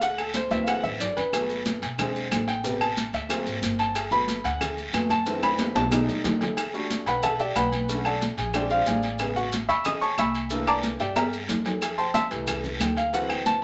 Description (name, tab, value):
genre	Afro-Cuban jazz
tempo	183 BPM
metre	4/4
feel	straight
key	G major, E minor from 6.6 s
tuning	A4 = 437 Hz
part	clear concert grand piano	accompaniment	0.0-13.6 s	C3 to E6	-28 LUFS	equal	none
part	upright bass	bass	0.0-13.6 s	E1 to G2	-38 LUFS	equal	none
part	congas	percussion	0.0-13.6 s	none	-34 LUFS	equal	none
part	cowbell and bongos	percussion	0.0-13.6 s	none	-39 LUFS	equal	none
part	guiro	percussion	0.0-13.6 s	none	-39 LUFS	equal	none
part	maracas	percussion	0.0-13.6 s	none	-40 LUFS	equal	none
part	agogo bells and timbales	percussion	0.2-13.5 s	none	-35 LUFS	equal	none
part	claves	percussion	0.2-13.5 s	none	-38 LUFS	equal	none
room	wet small room reverb, RT60 0.6 s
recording	nothing above 7.9 kHz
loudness	-26 LUFS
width	mono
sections	0.0-6.6 A section; 6.6-13.6 A section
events	grand piano solo 0.0-13.6; drum fill 0.5-1.3, 5.3-6.6, 11.2-11.8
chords	0.0 D9; 1.3 Gmaj9; 2.0 Eaug7; 2.6 Am9; 3.3 Daug7; 4.0 Gmaj7; 5.3 F#m7b5; 5.9 B7alt; 6.6 Em11; 7.9 Bm9; 8.5 A#13; 9.2 Amaj9; 10.5 C13; 11.8 Fmaj9; 13.1 D9